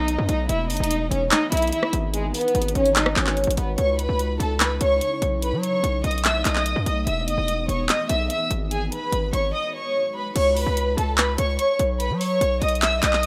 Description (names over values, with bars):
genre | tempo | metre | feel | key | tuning
hip hop, trap | 146 BPM | 4/4 | half-time | C# minor | A4 = 438 Hz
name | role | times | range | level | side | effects
dark studio violin section | melody | 0.0-13.3 s | G#3 to E6 | -25 LUFS | equal | tape echo
granular cloud pad | sustained chords | 0.0-10.3 s | C#3 to B4 | -37 LUFS | equal | built-in reverb
hard-hitting 808-style bass | bass | 0.0-13.3 s | E1 to F#3 | -27 LUFS | equal | none
trap drum kit | drums | 0.1-13.3 s | crash cymbal, handclaps, hi-hat, rim click | -26 LUFS | equal | overdrive
room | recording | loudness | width
light reverb, digital ambience | rough home demo mix | -22 LUFS | mono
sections
0.0-3.8 A section; 3.8-10.4 B section; 10.4-13.3 C section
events
none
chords
0.5 Emaj7; 2.1 G#m7; 3.8 C#madd9; 5.4 B7; 7.1 Emaj7; 8.7 G#m7; 10.4 Aadd9 (rootless); 12.0 B